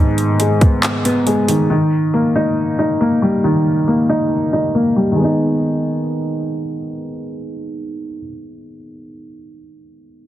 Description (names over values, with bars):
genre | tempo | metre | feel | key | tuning
hip hop, trap | 138 BPM | 4/4 | half-time | G# harmonic minor | A4 = 440 Hz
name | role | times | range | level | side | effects
felt-muted upright piano | accompaniment | 0.0-10.3 s | G#2 to D#4 | -16 LUFS | equal | low-pass filter
trap drum kit | drums | 0.2-1.6 s | handclaps, hi-hat, kick drum | -15 LUFS | equal | none
room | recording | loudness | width
light reverb | heavily compressed radio sound, multiband compression | -14 LUFS | side -13 dB against mid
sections
0.0-5.2 A section; 5.2-8.7 B section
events
filter sweep on felt piano 0.0-5.2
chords
0.0 G#m; 1.7 D#; 5.2 G#m